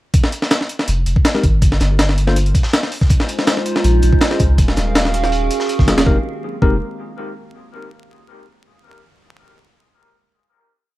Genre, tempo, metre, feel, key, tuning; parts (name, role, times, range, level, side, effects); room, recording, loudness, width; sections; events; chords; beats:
drum and bass, jungle; 162 BPM; 4/4; straight; F minor; A4 = 439 Hz
breakbeat sampler-style drum kit; drums; 0.1-6.7 s; hi-hat, kick drum, snare drum; -15 LUFS; equal
crunchy breakbeat drum kit; drums; 0.1-5.9 s; hi-hat, snare drum; -30 LUFS; equal; high-pass filter on hats, high-pass filter on snare, high-pass filter on room
soft dub sub bass; bass; 0.9-6.8 s; Eb1 to Db2; -16 LUFS; equal
tine electric piano; stabs; 1.3-6.8 s; Gb3 to Eb5; -22 LUFS; left 3 dB; medium tremolo, dub echo
little or no reverb; vinyl crackle; -13 LUFS; side -17 dB against mid
0.1-6.1 drop; 6.1-7.5 final chord
drop 0.1-6.1
0.1 Fm11; 1.6 N.C.; 3.1 Bbm11; 4.6 Ebm11; 6.1 Fm11
| 0.14 0.51 0.88 1.25 | 1.62 1.99 2.36 2.73 | 3.10 3.47 3.84 4.21 | 4.58 4.95 5.32 5.69 | 6.07 6.43